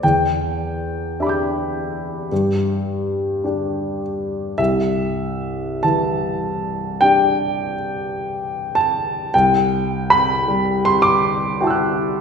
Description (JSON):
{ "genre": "classical, impressionist solo piano", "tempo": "46-54 BPM", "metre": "4/4", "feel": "rubato", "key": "unclear", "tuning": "A4 = 440 Hz", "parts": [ { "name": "warm baby grand piano", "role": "solo", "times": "0.0-12.2 s", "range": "C2 to G6", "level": "-17 LUFS", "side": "equal", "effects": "none" } ], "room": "wet recital hall reverb, RT60 1.6 s", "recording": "heard from further back in the room", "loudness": "-17 LUFS", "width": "side -6 dB against mid", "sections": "0.0-12.2 A section", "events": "none", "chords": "0.0 Em7; 2.3 G5; 4.6 C69; 9.3 Em11/C" }